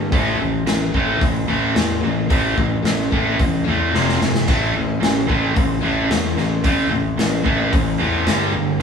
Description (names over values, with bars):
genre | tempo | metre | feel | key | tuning
hard rock | 110 BPM | 4/4 | straight | A minor | A4 = 440 Hz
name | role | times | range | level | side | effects
high-gain distorted guitar | riff | 0.0-8.8 s | F2 to A3 | -21 LUFS | right 3 dB | distortion
sludgy distorted guitar | riff | 0.0-8.8 s | F2 to A3 | -24 LUFS | left 7 dB | overdrive
fuzz fingered electric bass | bass | 0.0-8.8 s | F1 to G2 | -23 LUFS | equal | overdrive
raw garage drum kit | drums | 0.1-8.4 s | hi-hat, kick drum, snare drum, splash cymbal | -21 LUFS | equal | none
room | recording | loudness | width
moderate studio reverb, RT60 0.5 s | band playing live in one room | -16 LUFS | side -6 dB against mid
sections
0.0-8.8 A section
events
drum fill 3.9-4.5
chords
0.1 A5; 3.9 F5; 4.5 A5; 8.3 G5